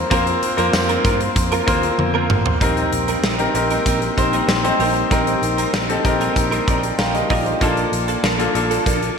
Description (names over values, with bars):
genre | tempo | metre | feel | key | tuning
1980s-style pop | 96 BPM | 4/4 | straight | unclear | A4 = 441 Hz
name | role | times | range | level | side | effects
clear concert grand piano | accompaniment | 0.0-9.2 s | Bb3 to Bb5 | -20 LUFS | left 2 dB | none
glassy FM pad | sustained chords | 0.0-9.2 s | Bb3 to D6 | -27 LUFS | left 1 dB | ensemble chorus, built-in reverb
vintage muted fingered electric bass | bass | 0.0-9.1 s | A1 to G2 | -25 LUFS | right 1 dB | none
direct-recorded clean electric guitar | riff | 0.1-9.1 s | F3 to Bb4 | -25 LUFS | right 6 dB | ensemble chorus, ping-pong delay
big rock drum kit | drums | 0.1-9.2 s | hi-hat, kick drum, snare drum, tambourine, toms | -21 LUFS | equal | none
room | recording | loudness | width
wet lush hall reverb, RT60 1.8 s, studio reverb | bright 1980s-style digital production | -16 LUFS | side -6 dB against mid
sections
0.0-2.6 A section; 2.6-9.2 B section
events
drum fill 2.0-2.6; grand piano fill 5.7-7.6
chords
0.0 Bbsus2; 2.6 Cm7/Bb; 7.6 Bbmaj7